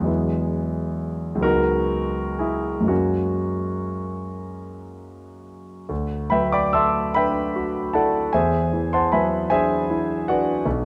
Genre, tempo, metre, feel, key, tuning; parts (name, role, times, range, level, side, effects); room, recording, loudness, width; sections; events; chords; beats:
classical, impressionist solo piano; 38-54 BPM (dotted quarters); 6/8; rubato; F# mixolydian, D mixolydian from 5.9 s; A4 = 440 Hz
warm concert grand piano; solo; 0.0-10.8 s; B1 to E6; -23 LUFS; equal
moderate recital hall reverb, RT60 1.4 s; close, detailed microphones; -22 LUFS; mono
0.0-5.9 A section; 5.9-10.8 B section
0.1 Eadd9; 1.4 C#9sus4; 2.9 F#add9; 5.9 D69; 8.3 E9
| 0.08 1.44 | 2.90 4.41 | 5.90 7.15 | 8.34 9.52 | 10.65